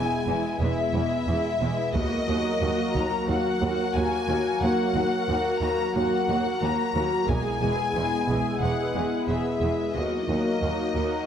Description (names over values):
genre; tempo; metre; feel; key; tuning
cinematic, hybrid orchestral and electronic film score; 90 BPM; 4/4; straight; Eb phrygian; A4 = 440 Hz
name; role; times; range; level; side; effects
rich studio violin section; melody; 0.0-11.3 s; Eb5 to Bb5; -29 LUFS; left 5 dB; none
rich symphonic viola section; accompaniment; 0.0-11.3 s; G#3 to G#4; -29 LUFS; right 1 dB; none
chorused pulse-width pad; sustained chords; 0.0-11.3 s; Gb3 to Bb4; -28 LUFS; left 1 dB; none
clear studio cello section; bass; 0.0-11.0 s; Eb2 to E2; -32 LUFS; right 2 dB; none
rich symphonic double bass section; bass; 0.0-11.0 s; E1 to Eb2; -32 LUFS; right 3 dB; none
taiko ensemble; drums; 1.9-3.3, 7.3-8.6 s; none; -34 LUFS; equal; none
reverse cymbal; sound effects; 11.2-11.3 s; none; barely audible; none; none
room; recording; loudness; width
wet scoring stage reverb, RT60 1.9 s; none; -23 LUFS; side -8 dB against mid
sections
0.0-11.3 A section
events
none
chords
0.0 E; 2.0 Ebm; 7.3 E; 10.0 Ebm